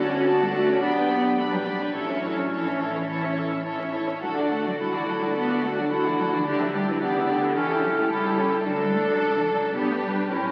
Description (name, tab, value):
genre	quick classical-period movement for symphony orchestra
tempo	108 BPM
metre	4/4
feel	rubato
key	D major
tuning	A4 = 440 Hz
part	rich studio violin section	melody	0.0-10.5 s	G4 to B5	-35 LUFS	equal	none
part	mellow clarinet	second line	0.0-10.5 s	B3 to F#4	-31 LUFS	equal	none
part	rich studio violin section	second line	0.0-10.5 s	D4 to D5	-34 LUFS	equal	none
part	dark studio viola section	accompaniment	0.0-10.5 s	B3 to F#4	-32 LUFS	equal	none
part	warm French horn section	sustained chords	0.0-10.5 s	C#4 to A4	-31 LUFS	equal	none
part	rich chamber double bass section	bass	0.0-10.5 s	A1 to D2	-41 LUFS	equal	none
part	warm studio cello section	bass	0.0-10.5 s	C#3 to D4	-32 LUFS	equal	none
room	wet scoring stage reverb, RT60 2.0 s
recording	very old 78 rpm record, vinyl crackle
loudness	-24 LUFS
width	mono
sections	0.0-10.5 A section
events	none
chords	0.0 D; 0.8 G/B; 1.9 A; 4.2 D; 6.5 Em7/D; 7.6 A7/C#; 8.7 D; 9.7 G/B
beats	0.28 0.82 1.38 | 1.95 2.52 3.09 3.66 | 4.23 4.79 5.36 5.91 | 6.46 7.02 7.56 8.11 | 8.66 9.20 9.75 10.31